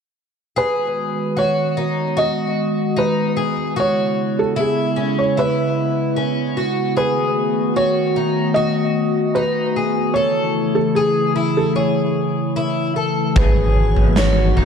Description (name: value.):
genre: dream pop.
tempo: 75 BPM.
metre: 4/4.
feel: straight.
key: unclear.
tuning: A4 = 440 Hz.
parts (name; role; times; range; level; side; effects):
felt-muted upright piano; melody; 0.6-14.7 s; G#4 to D#5; -21 LUFS; right 2 dB; ping-pong delay.
warbly tape-like pad; sustained chords; 0.9-14.7 s; C#3 to F#4; -20 LUFS; left 1 dB; chorus, built-in reverb.
fingerpicked twelve-string acoustic guitar; arpeggios; 0.6-14.7 s; C#4 to A4; -22 LUFS; left 3 dB; wide subtle chorus, ping-pong delay.
sub bass with octave; bass; 13.4-14.7 s; F#1 to G#1; -17 LUFS; right 1 dB; none.
oversized low-tuned drum kit; drums; 13.4-14.7 s; kick drum, snare drum, toms; -17 LUFS; equal; none.
shimmering bell with halo; texture; 13.4-14.7 s; C#5; -33 LUFS; right 2 dB; ensemble chorus, ping-pong delay.
room: moderate lush hall reverb, RT60 2.6 s.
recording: dark, warm production.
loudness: -16 LUFS.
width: side -7 dB against mid.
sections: 0.6-14.7 A section.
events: none.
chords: 0.6 G#m7; 3.8 C#m7; 7.0 B7; 10.2 Amaj7; 13.4 G#m7.